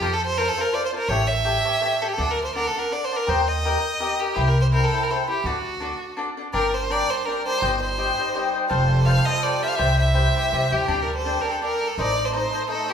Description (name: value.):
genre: mexican folk, mariachi.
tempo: 166 BPM.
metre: 3/4.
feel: swing 55% on 8ths.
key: unclear.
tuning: A4 = 440 Hz.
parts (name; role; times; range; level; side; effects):
clear violin; melody; 0.0-12.9 s; F#4 to F5; -24 LUFS; right 1 dB; none.
cavaquinho; accompaniment; 0.0-12.9 s; D4 to G5; -25 LUFS; left 3 dB; none.
upright bass; bass; 0.0-12.4 s; F1 to F2; -24 LUFS; equal; none.
muted studio violin section; sustained chords; 6.5-12.9 s; G3 to C5; -31 LUFS; right 4 dB; none.
room: wet large studio reverb, RT60 1.2 s.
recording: band playing live in one room.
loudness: -20 LUFS.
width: side -8 dB against mid.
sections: 0.0-12.9 A section.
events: none.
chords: 0.0 F; 1.1 A7; 2.2 D; 3.3 Eb; 4.4 C; 5.4 D; 6.5 Gm; 7.6 Cm/G; 8.7 Fadd9; 9.8 C; 10.9 Dsus4; 12.0 Adim.